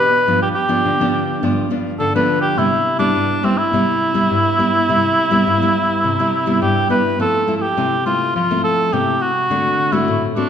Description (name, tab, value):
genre	samba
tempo	104 BPM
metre	4/4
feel	straight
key	C major, F major from 7.2 s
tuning	A4 = 440 Hz
part	warm cor anglais	melody	0.0-10.5 s	C4 to B4	-16 LUFS	equal	none
part	nylon-string guitar	accompaniment	0.0-10.5 s	G2 to F#4	-18 LUFS	left 1 dB	none
room	wet recital hall reverb, RT60 1.3 s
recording	recorded in a church or concert hall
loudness	-14 LUFS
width	side -8 dB against mid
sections	0.0-7.2 A section; 7.2-10.5 B section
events	none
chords	0.3 G7; 2.6 Cmaj7; 7.2 Fmaj7; 9.5 D7